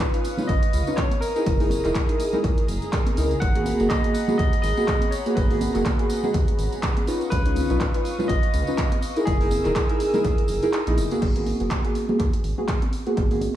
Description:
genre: deep house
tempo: 123 BPM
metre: 4/4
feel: swing 56% on 16ths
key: G# minor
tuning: A4 = 440 Hz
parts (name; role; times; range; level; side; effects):
- barky tine electric piano; melody; 0.0-10.7 s; G#4 to F#5; -30 LUFS; equal; overdrive, tape echo
- warm analog pad; sustained chords; 0.0-11.2 s; G#4 to E6; -34 LUFS; equal; chorus, sidechain pumping
- deep mellow chord stab; stabs; 0.0-13.4 s; G#3 to D#5; -25 LUFS; equal; chorus, sidechain pumping, analog delay
- deep house drum kit; drums; 0.0-13.5 s; crash cymbal, handclaps, hi-hat; -34 LUFS; right 1 dB; overdrive, analog delay
- electronic kick drum; drums; 0.0-13.3 s; none; -24 LUFS; equal; overdrive
- tambourine; percussion; 0.0-11.2 s; none; -43 LUFS; right 3 dB; analog delay
- congas; percussion; 0.4-13.5 s; none; -33 LUFS; right 2 dB; sidechain pumping on perc, analog delay
- round analog bass; bass; 0.5-13.5 s; E1 to D#2; -25 LUFS; equal; sidechain pumping
room: light reverb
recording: echo-heavy mix, studio reverb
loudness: -20 LUFS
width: side -12 dB against mid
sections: 0.0-11.2 A section; 11.2-13.6 B section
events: drop 0.0-11.2; kick drops out 10.7-11.2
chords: 0.0 C#9; 1.5 F#13; 3.4 G#m9; 7.1 C#9; 9.3 F#13; 11.2 G#m9

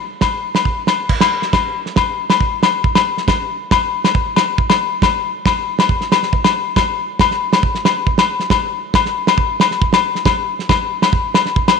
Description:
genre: highlife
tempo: 138 BPM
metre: 4/4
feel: straight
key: none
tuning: none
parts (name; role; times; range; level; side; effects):
- damped 70s drum kit; drums; 0.2-11.8 s; crash cymbal, kick drum, snare drum; -17 LUFS; right 4 dB; none
- agogo bells; percussion; 0.2-11.8 s; none; -16 LUFS; left 9 dB; none
room: moderate echo chamber reverb, RT60 1.7 s, studio ambience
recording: 1960s-style stereo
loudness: -14 LUFS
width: side -5 dB against mid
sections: 0.0-1.1 A section; 1.1-11.8 B section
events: none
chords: none

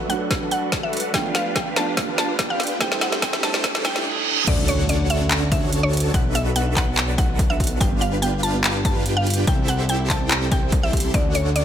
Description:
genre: future bass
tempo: 144 BPM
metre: 4/4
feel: half-time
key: D major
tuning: A4 = 440 Hz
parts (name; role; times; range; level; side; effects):
- mallet-like synth pluck; melody; 0.0-11.6 s; C#5 to A5; -27 LUFS; equal; chorus, sidechain pumping, dub echo
- felt-muted upright piano; accompaniment; 0.0-4.5 s; F3 to C#5; -31 LUFS; right 4 dB; sidechain pumping, dub echo
- supersaw chords; riff; 0.0-11.6 s; D4 to C6; -27 LUFS; right 1 dB; phaser, sidechain pumping, low-pass filter
- riser, reverse cymbal and impact; sound effects; 1.0-6.1 s; none; -28 LUFS; right 2 dB; none
- trap drum kit; drums; 0.1-11.6 s; crash cymbal, handclaps, hi-hat, snare drum; -24 LUFS; equal; high-pass filter on snare, studio reverb, high-pass filter on hats, high-pass filter on cymbals
- electronic kick drum; drums; 0.3-11.2 s; none; -23 LUFS; equal; overdrive, studio reverb
- soft round pluck; arpeggios; 4.5-11.6 s; B3 to C#5; -31 LUFS; right 4 dB; chorus, sidechain pumping, dub echo
- fat analog bass; bass; 4.5-11.6 s; G1 to D2; -23 LUFS; left 1 dB; sidechain pumping
room: light reverb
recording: high-pass filter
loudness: -18 LUFS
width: side -9 dB against mid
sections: 0.0-4.5 A section; 4.5-11.6 B section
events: build-up 0.0-4.5; drum fill 0.0-4.1; filter sweep on supersaw synth 0.0-4.5; filter sweep 0.0-4.5; riser 1.0-4.1; reverse cymbal 3.6-4.5; drop 4.5-11.6; impact 4.5-6.1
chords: 0.0 Bm7; 1.1 G7; 2.8 C6; 4.5 Dmaj7; 6.1 Bm7; 7.8 G7; 9.5 C6; 11.1 Dmaj7

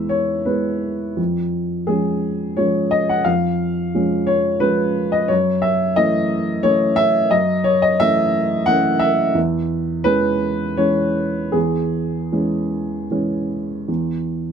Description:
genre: neoclassical minimalist piano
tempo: 76-90 BPM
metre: 3/4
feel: rubato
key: unclear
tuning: A4 = 440 Hz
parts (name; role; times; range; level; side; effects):
- dark upright piano; solo; 0.0-14.5 s; E2 to F#5; -17 LUFS; equal; none
room: little or no reverb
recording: close, detailed microphones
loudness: -17 LUFS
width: side -7 dB against mid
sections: 0.0-13.9 A section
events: none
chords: 0.0 E; 1.2 C#/E#; 5.3 F#m7; 9.4 C#m/E; 13.9 N.C.

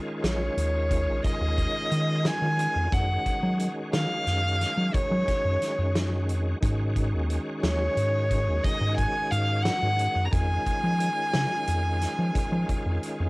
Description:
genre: progressive instrumental, band music in an uneven meter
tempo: 178 BPM (eighths)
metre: 11/8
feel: straight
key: Eb minor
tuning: A4 = 440 Hz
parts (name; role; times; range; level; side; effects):
- bright tonewheel organ; accompaniment; 0.0-13.3 s; Eb3 to Gb4; -32 LUFS; equal; overdrive, chorus vibrato, fast rotary speaker, cassette tape
- warm violin; melody; 0.2-13.3 s; Db5 to Bb5; -28 LUFS; equal; none
- rubbery square bass; bass; 0.2-13.3 s; Bb1 to Gb3; -26 LUFS; equal; none
- loose indie drum kit; drums; 0.2-13.2 s; hi-hat, kick drum, snare drum; -30 LUFS; equal; cassette tape
room: light reverb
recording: home recording on cassette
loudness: -23 LUFS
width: side -24 dB against mid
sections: 0.0-13.3 A section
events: none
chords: 0.0 Eb5; 2.9 Gb5; 6.6 Ab5; 10.3 Eb9sus4

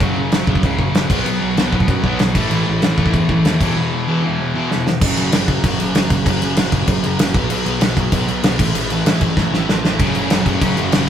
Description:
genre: punk rock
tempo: 192 BPM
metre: 4/4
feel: straight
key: F# minor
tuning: A4 = 440 Hz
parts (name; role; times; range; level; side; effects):
- distorted electric guitar; riff; 0.0-4.9, 10.0-11.1 s; E2 to B3; -22 LUFS; equal; overdrive
- overdriven semi-hollow guitar; riff; 0.0-11.1 s; E2 to B3; -23 LUFS; right 5 dB; none
- sludgy distorted guitar; riff; 0.0-11.1 s; E2 to B3; -23 LUFS; left 4 dB; overdrive
- modern bright picked electric bass; bass; 0.0-11.1 s; E1 to F#2; -23 LUFS; right 1 dB; none
- loose indie drum kit; drums; 0.0-11.0 s; crash cymbal, kick drum, snare drum; -17 LUFS; equal; none
room: light reverb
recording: rough rehearsal-room recording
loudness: -14 LUFS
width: side -9 dB against mid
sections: 0.0-5.0 A section; 5.0-11.1 B section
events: break 3.8-5.0; drum fill 4.7-5.0, 9.4-10.0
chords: 0.0 F#5; 1.1 B5; 2.4 A5; 3.6 E5; 5.0 F#5; 7.4 B5; 8.6 A5; 10.0 F#5

